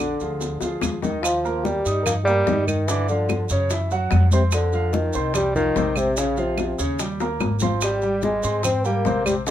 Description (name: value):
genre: Afro-Cuban jazz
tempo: 146 BPM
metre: 4/4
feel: straight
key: Eb major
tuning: A4 = 440 Hz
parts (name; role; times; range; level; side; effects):
- mellow bassoon; melody; 0.0-9.4 s; C3 to C4; -24 LUFS; equal; none
- trombone with bucket mute; second line; 0.0-9.5 s; C4 to C5; -29 LUFS; left 5 dB; none
- clear concert grand piano; accompaniment; 0.0-9.5 s; C3 to Eb6; -27 LUFS; right 2 dB; none
- upright bass; bass; 0.0-9.5 s; Ab1 to Ab2; -24 LUFS; equal; none
- bongos; percussion; 0.0-9.5 s; none; -30 LUFS; left 7 dB; none
- claves; percussion; 0.0-9.5 s; none; -31 LUFS; right 5 dB; none
- congas; percussion; 0.2-9.5 s; none; -30 LUFS; left 2 dB; none
- maracas; percussion; 0.2-9.5 s; none; -33 LUFS; right 6 dB; none
room: moderate club reverb, RT60 0.7 s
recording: minimal, uncompressed stereo recording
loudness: -19 LUFS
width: side -11 dB against mid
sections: 0.0-1.2 A section; 1.2-9.5 B section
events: drum fill 0.4-1.2, 7.2-7.8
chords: 0.0 Bb7 (rootless); 1.2 Ebadd9; 2.9 G5; 3.7 Cadd11; 4.5 F7sus4; 6.2 Bbmadd9; 7.0 Eb; 7.8 Abmaj9